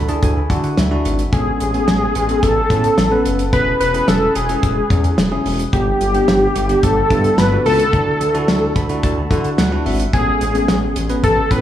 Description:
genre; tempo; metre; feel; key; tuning
synth-pop; 109 BPM; 4/4; straight; A major; A4 = 440 Hz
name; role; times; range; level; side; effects
bell-like tine electric piano; accompaniment; 0.0-11.6 s; A3 to B5; -22 LUFS; equal; tape echo
smooth synth bass; bass; 0.0-11.6 s; E1 to D3; -20 LUFS; equal; none
damped 70s drum kit; drums; 0.1-11.6 s; hi-hat, kick drum, snare drum; -20 LUFS; equal; none
wide unison lead; melody; 1.3-11.6 s; G4 to B4; -18 LUFS; left 1 dB; tape echo
room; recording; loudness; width
light reverb, small room ambience; echo-heavy mix, small room reverb; -14 LUFS; side -11 dB against mid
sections
0.0-11.6 A section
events
tine electric piano fill 0.0-1.3, 8.5-10.1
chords
0.0 Dadd9; 1.3 Aadd9; 3.5 E6; 5.7 G; 7.9 Dadd9; 10.1 Aadd9

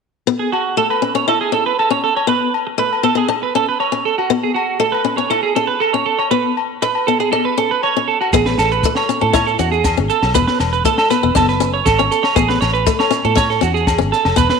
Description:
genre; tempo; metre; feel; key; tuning
highlife guitar band; 119 BPM; 4/4; straight; A major; A4 = 443 Hz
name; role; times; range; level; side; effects
picked swing-style acoustic guitar; accompaniment; 0.3-14.5 s; A3 to E4; -20 LUFS; left 10 dB; none
clean electric guitar; arpeggios; 0.4-14.6 s; F#4 to C#5; -16 LUFS; right 8 dB; analog chorus, slapback echo
agogo bells; percussion; 0.5-14.4 s; none; -24 LUFS; left 14 dB; none
fingered electric bass; bass; 8.3-14.5 s; E1 to A2; -20 LUFS; left 1 dB; none
compact cocktail drum kit; drums; 8.3-14.6 s; kick drum, snare drum; -21 LUFS; equal; none
maracas; percussion; 8.3-14.6 s; none; -31 LUFS; right 12 dB; none
room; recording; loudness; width
moderate echo chamber reverb, RT60 2.2 s; 1960s-style stereo with parts hard left and right; -14 LUFS; side -5 dB against mid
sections
0.3-8.3 A section; 8.3-14.6 B section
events
none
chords
0.3 A; 2.3 Asus2; 3.3 Dmaj7(no3); 4.3 A; 6.3 Asus2; 7.3 Dmaj7(no3); 8.3 Amaj7; 10.3 Esus4; 11.4 Dmaj7/F#; 12.4 Amaj7

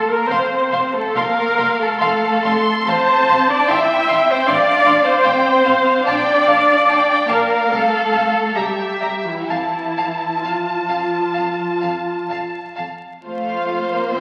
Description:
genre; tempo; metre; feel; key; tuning
classical, slow romantic movement for string orchestra; 61-78 BPM; 4/4; rubato; F major; A4 = 440 Hz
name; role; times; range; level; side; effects
rich studio viola section; accompaniment; 0.0-14.2 s; E4 to E5; -19 LUFS; equal; none
rich studio cello section; bass; 0.0-14.2 s; E3 to E4; -28 LUFS; equal; none
rich symphonic violin section; second line; 0.3-14.2 s; C5 to C6; -26 LUFS; equal; none
clear studio double bass section; bass; 0.3-14.2 s; F1 to F2; -39 LUFS; equal; none
warm studio violin section; melody; 1.2-14.2 s; E5 to C6; -24 LUFS; equal; none
room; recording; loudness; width
wet scoring stage reverb, RT60 1.8 s; very old 78 rpm record, vinyl crackle; -17 LUFS; mono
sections
0.0-13.2 A section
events
none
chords
0.0 F; 2.9 F/A; 6.1 Bb; 7.7 F; 8.6 C (rootless); 9.5 F

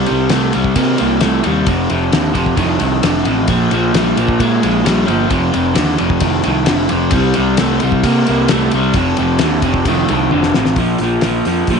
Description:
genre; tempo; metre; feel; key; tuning
classic rock; 132 BPM; 4/4; straight; unclear; A4 = 440 Hz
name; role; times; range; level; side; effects
crunchy overdriven guitar; riff; 0.0-11.8 s; F2 to Bb3; -14 LUFS; equal; none
fuzz picked electric bass; bass; 0.0-11.8 s; F1 to C3; -19 LUFS; right 1 dB; overdrive
cloth-damped thuddy drum kit; drums; 0.1-11.8 s; hi-hat, kick drum, ride cymbal, snare drum, toms; -20 LUFS; left 4 dB; none
room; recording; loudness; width
light reverb, studio reverb; 1960s-style stereo, nothing above 10.4 kHz; -12 LUFS; side -6 dB against mid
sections
0.0-10.8 A section; 10.8-11.8 B section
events
drum fill 10.3-10.8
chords
0.0 C5; 1.7 F5; 3.5 Bb5; 5.3 F5; 7.1 C5; 9.0 F5; 10.8 Bb5

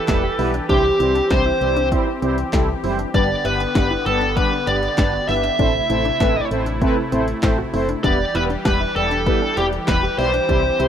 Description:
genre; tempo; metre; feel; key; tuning
synth-pop; 98 BPM; 4/4; straight; unclear; A4 = 440 Hz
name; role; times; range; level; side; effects
smooth overdriven lead guitar; melody; 0.0-10.9 s; G4 to E5; -20 LUFS; equal; digital delay
brassy analog pad; sustained chords; 0.0-10.9 s; C3 to B4; -27 LUFS; left 2 dB; chorus
analog synth brass; accompaniment; 0.1-10.9 s; G3 to D5; -23 LUFS; equal; chorus
wide unison pluck; arpeggios; 0.1-10.9 s; B3 to G4; -28 LUFS; left 1 dB; auto-pan, digital delay
solid FM bass; bass; 0.1-10.9 s; E1 to C2; -25 LUFS; equal; none
punchy analog drum machine; drums; 0.1-10.9 s; handclaps, hi-hat, kick drum, snare drum; -22 LUFS; equal; none
room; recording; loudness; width
light reverb; rough home demo mix; -16 LUFS; side -9 dB against mid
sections
0.0-10.9 A section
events
none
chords
0.0 Em; 0.7 C; 3.1 G; 5.6 Am; 8.0 Em

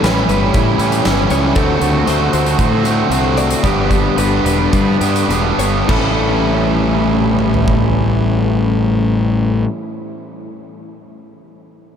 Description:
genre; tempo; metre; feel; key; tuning
rock, shoegaze and dream pop; 100-118 BPM; 4/4; straight; A mixolydian; A4 = 440 Hz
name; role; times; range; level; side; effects
direct-recorded clean electric guitar; arpeggios; 0.0-6.7 s; G4 to D5; -25 LUFS; left 3 dB; lush chorus, diffuse ambient delay
biting overdriven guitar; riff; 0.0-9.7 s; G2 to A4; -19 LUFS; right 8 dB; reverse reverb
overdriven semi-hollow guitar; riff; 0.0-9.7 s; G2 to G4; -18 LUFS; left 6 dB; lush chorus
fuzz fingered electric bass; bass; 0.0-9.6 s; E1 to A2; -18 LUFS; right 1 dB; overdrive
huge arena drum kit; drums; 0.0-7.8 s; crash cymbal, hi-hat, kick drum, snare drum, toms; -21 LUFS; equal; none
room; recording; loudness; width
moderate huge ambient reverb, RT60 6.8 s; dreamy mix soaked in reverb; -12 LUFS; side -8 dB against mid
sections
0.0-5.9 A section; 5.9-10.7 B section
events
slowing down 1.6-5.9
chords
0.0 A7; 1.6 D7; 3.6 G; 5.9 A7

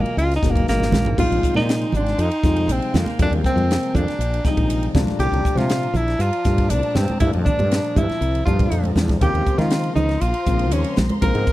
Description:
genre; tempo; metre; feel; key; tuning
electric jazz fusion; 120 BPM; 4/4; straight; Bb mixolydian; A4 = 440 Hz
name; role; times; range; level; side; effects
breathy tenor saxophone; melody; 0.0-11.5 s; Bb3 to Bb4; -23 LUFS; equal; slapback echo
dark grand piano; accompaniment; 0.0-11.5 s; Bb2 to Eb4; -26 LUFS; left 4 dB; none
dark studio string section; sustained chords; 0.0-11.5 s; F3 to C6; -35 LUFS; equal; none
woody fretless electric bass; bass; 0.0-11.5 s; Gb1 to Eb3; -21 LUFS; equal; none
crisp fusion drum kit; drums; 0.1-11.5 s; crash cymbal, hi-hat, kick drum, ride cymbal, snare drum, toms; -23 LUFS; equal; none
congas; percussion; 0.8-11.2 s; none; -25 LUFS; right 2 dB; none
hollow-body jazz guitar; second line; 1.2-11.5 s; Bb3 to Bb4; -30 LUFS; right 4 dB; none
room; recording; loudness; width
little or no reverb; dry, close 1970s-style studio recording; -17 LUFS; side -16 dB against mid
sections
0.0-1.2 A section; 1.2-11.5 B section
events
tenor saxophone solo 0.0-1.2; drum fill 0.7-1.2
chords
0.0 Db13sus4; 1.2 Bb13sus4; 4.9 C13sus4; 9.2 Eb13sus4

